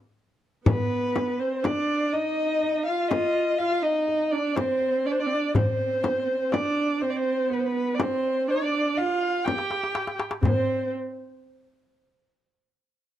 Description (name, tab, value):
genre	Arabic maqam ensemble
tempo	123 BPM (eighths)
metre	10/8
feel	straight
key	unclear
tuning	A4 = 440 Hz
part	dark violin	melody	0.7-10.9 s	B4 to G5	-26 LUFS	left 1 dB	plate reverb
part	dark viola	second line	0.7-10.9 s	B3-49c to G4	-28 LUFS	right 4 dB	none
part	darbuka	percussion	0.7-10.9 s	none	-27 LUFS	left 2 dB	none
part	frame drum	percussion	0.7-10.9 s	none	-26 LUFS	left 2 dB	none
room	moderate studio reverb, RT60 0.6 s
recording	lossy compression artefacts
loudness	-23 LUFS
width	side -12 dB against mid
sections	0.0-10.4 A section; 10.4-13.2 B section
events	drum fill 9.5-10.4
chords	none